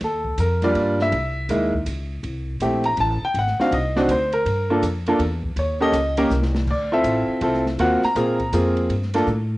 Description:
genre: jazz piano trio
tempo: 162 BPM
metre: 3/4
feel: swing 64% on 8ths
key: D minor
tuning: A4 = 440 Hz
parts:
  - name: warm concert grand piano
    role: melody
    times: 0.0-9.3 s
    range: G3 to Bb5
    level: -20 LUFS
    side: equal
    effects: none
  - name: upright bass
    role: bass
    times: 0.0-9.6 s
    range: G#1 to A#2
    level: -24 LUFS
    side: equal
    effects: none
  - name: open jazz drum kit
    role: drums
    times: 0.0-9.4 s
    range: crash cymbal, hi-hat, kick drum, ride cymbal, snare drum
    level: -33 LUFS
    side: equal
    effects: cassette tape
room: moderate spring reverb, RT60 1.1 s, studio ambience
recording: home recording on cassette, nothing above 10.8 kHz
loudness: -19 LUFS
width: side -18 dB against mid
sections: 0.0-6.7 A section; 6.7-9.6 A section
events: grand piano solo 0.0-9.6; drum fill 6.3-6.7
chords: 0.0 Ebmaj7; 1.1 C(#9); 2.2 Am7; 3.3 G#7#11; 4.5 Gm7; 5.6 Eb7; 6.7 Dm9; 7.8 G#13; 8.9 N.C.

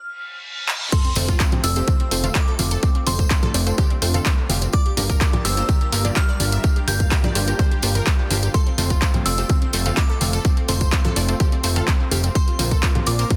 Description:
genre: progressive house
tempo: 126 BPM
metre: 4/4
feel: straight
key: F major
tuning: A4 = 440 Hz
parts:
  - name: glassy synth bell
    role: melody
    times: 0.0-13.4 s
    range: C6 to G6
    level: -33 LUFS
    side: equal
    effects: chorus, phaser, delay
  - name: reverse cymbal and sub drop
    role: sound effects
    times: 0.2-2.8 s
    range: none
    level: -34 LUFS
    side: equal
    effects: none
  - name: house drum kit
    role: drums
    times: 0.7-13.4 s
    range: crash cymbal, handclaps, hi-hat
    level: -27 LUFS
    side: equal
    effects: overdrive, sidechain pumping on hats, sidechain pumping on cymbals
  - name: soft synth bell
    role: second line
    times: 0.9-13.4 s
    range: none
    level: barely audible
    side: none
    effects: none
  - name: lush unison pad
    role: sustained chords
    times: 0.9-13.4 s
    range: G3 to A5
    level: -36 LUFS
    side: equal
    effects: none
  - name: unison pluck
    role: arpeggios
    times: 0.9-13.4 s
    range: C4 to F5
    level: -34 LUFS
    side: equal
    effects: sidechain pumping, delay
  - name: electronic kick drum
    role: drums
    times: 0.9-13.4 s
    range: none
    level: -21 LUFS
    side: equal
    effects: overdrive
  - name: tambourine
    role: percussion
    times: 0.9-13.4 s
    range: none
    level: -34 LUFS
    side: equal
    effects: none
  - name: unison pluck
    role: stabs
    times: 1.2-13.3 s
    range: A3 to F5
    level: -32 LUFS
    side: equal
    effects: cassette tape, sidechain pumping, delay
  - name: fat analog bass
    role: bass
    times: 1.2-13.2 s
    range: F1 to Bb1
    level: -24 LUFS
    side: equal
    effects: sidechain pumping
  - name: congas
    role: percussion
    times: 1.2-13.4 s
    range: none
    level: -32 LUFS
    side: equal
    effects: none
room: digital ambience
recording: dense, heavily limited modern master, high-pass filter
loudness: -20 LUFS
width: mono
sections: 0.9-13.4 A section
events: break 0.0-0.9; reverse cymbal 0.2-0.9; drum fill 0.7; drop 0.9-13.4; impact 0.9-2.8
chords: 0.0 N.C.; 0.9 F; 4.7 Gm7; 8.5 F; 12.4 Bbsus2

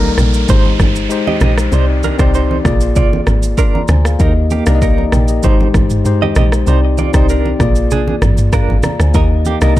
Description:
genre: afrobeats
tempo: 97 BPM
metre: 4/4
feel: straight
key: Eb major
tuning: A4 = 440 Hz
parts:
  - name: tine electric piano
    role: accompaniment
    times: 0.0-9.8 s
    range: G3 to C6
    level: -17 LUFS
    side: left 5 dB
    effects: none
  - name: direct-recorded clean electric guitar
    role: riff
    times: 0.0-9.8 s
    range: Bb3 to Eb5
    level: -22 LUFS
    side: right 9 dB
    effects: tremolo, ping-pong delay
  - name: deep log drum bass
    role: bass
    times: 0.0-9.8 s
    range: G1 to Eb2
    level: -14 LUFS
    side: equal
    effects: none
  - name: congas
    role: percussion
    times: 0.0-9.6 s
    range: none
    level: -22 LUFS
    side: right 2 dB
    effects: none
  - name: downlifter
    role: sound effects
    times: 0.0-4.2 s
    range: none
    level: -26 LUFS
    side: right 2 dB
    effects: none
  - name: afro-pop drum kit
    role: drums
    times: 0.2-9.8 s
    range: kick drum, rim click, shaker, toms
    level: -15 LUFS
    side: equal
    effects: none
room: little or no reverb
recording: dark, warm production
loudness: -10 LUFS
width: side -15 dB against mid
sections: 0.0-9.8 A section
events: none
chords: 0.5 Abmaj7; 1.7 Cmadd9; 2.7 Bb7; 4.2 Eb; 5.4 Abmaj7; 6.7 Cmadd9; 7.6 Bb7; 9.1 Eb

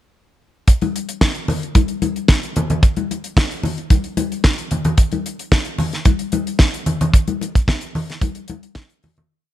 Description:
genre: disco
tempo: 112 BPM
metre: 4/4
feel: straight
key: none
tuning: none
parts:
  - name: damped 70s drum kit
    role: drums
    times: 0.7-9.3 s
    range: hi-hat, kick drum, snare drum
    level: -15 LUFS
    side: equal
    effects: none
  - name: congas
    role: percussion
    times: 0.8-9.3 s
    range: none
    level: -21 LUFS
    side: left 3 dB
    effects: none
room: light reverb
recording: none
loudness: -16 LUFS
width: side -13 dB against mid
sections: 0.7-9.3 breakdown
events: fade-out 7.1-9.3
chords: none

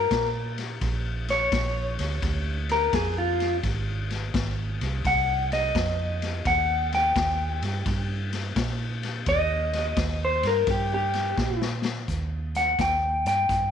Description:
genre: electric blues shuffle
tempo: 85 BPM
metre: 4/4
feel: swing 66% on 8ths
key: Eb mixolydian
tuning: A4 = 441 Hz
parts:
  - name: electric guitar through a small old amp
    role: melody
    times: 0.0-13.7 s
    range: F4 to G5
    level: -24 LUFS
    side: left 1 dB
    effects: none
  - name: vintage muted fingered electric bass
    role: bass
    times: 0.0-13.7 s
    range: Ab1 to Bb2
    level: -29 LUFS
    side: right 2 dB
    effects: none
  - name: raw garage drum kit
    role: drums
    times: 0.1-13.7 s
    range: hi-hat, kick drum, ride cymbal, snare drum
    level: -30 LUFS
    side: left 3 dB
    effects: none
room: light reverb, small room ambience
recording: 1960s-style stereo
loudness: -23 LUFS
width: side -8 dB against mid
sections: 0.0-12.1 A section; 12.1-13.7 B section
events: clean electric guitar solo 0.0-12.1; drum fill 11.4-12.1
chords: 0.0 N.C.; 0.8 Bb; 3.6 Ab; 6.5 Eb

